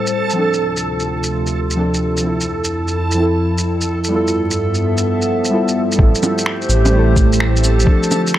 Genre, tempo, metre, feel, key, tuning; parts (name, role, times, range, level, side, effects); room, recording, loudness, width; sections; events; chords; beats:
future garage; 128 BPM; 4/4; swing 66% on 16ths; A minor; A4 = 440 Hz
muted felt-like synth keys; accompaniment; 0.0-8.4 s; F3 to A4; -20 LUFS; equal; chorus, sidechain pumping, digital delay
warbly tape-like pad; sustained chords; 0.0-8.4 s; D2 to E5; -19 LUFS; equal; chorus, built-in reverb, phaser, sidechain pumping
backwards swelling texture; texture; 0.0-8.4 s; A4; -26 LUFS; right 3 dB; built-in reverb
electronic shaker, bongos, cabasa and finger snaps; drums; 0.1-8.4 s; -21 LUFS; right 1 dB
dark detuned saw bass; bass; 6.0-7.9 s; A1; -14 LUFS; equal; sidechain pumping
electronic kick drum; drums; 6.0-8.0 s; -12 LUFS; equal
light reverb; vinyl crackle; -14 LUFS; side -13 dB against mid
0.0-6.0 A section; 6.0-8.4 B section
filter sweep on ambient pad 0.0-6.0
0.4 Dm7; 2.2 Fmaj7; 4.1 G13; 6.0 Am7; 7.9 Dm7
| 0.37 0.84 1.31 1.78 | 2.25 2.71 3.18 3.65 | 4.12 4.59 5.06 5.53 | 6.00 6.46 6.93 7.40 | 7.87 8.34